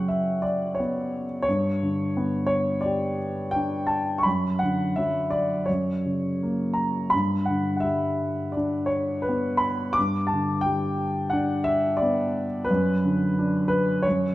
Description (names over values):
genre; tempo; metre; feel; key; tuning
classical, lyrical solo piano; 86 BPM; 4/4; rubato; unclear; A4 = 440 Hz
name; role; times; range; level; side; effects
dark grand piano; solo; 0.0-14.3 s; F#2 to D6; -22 LUFS; equal; none
room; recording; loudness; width
moderate recital hall reverb, RT60 1.8 s; dark, warm production; -22 LUFS; side -16 dB against mid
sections
0.0-14.3 A section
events
none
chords
0.0 F#sus4; 1.5 G; 4.3 Bmadd11/F#; 5.7 F#; 7.1 G; 12.7 Bm/F#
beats
0.11 0.79 | 1.47 2.16 2.85 3.54 | 4.25 4.97 5.68 6.41 | 7.13 7.84 8.55 9.26 | 9.97 10.65 11.33 12.01 | 12.69 13.37 14.06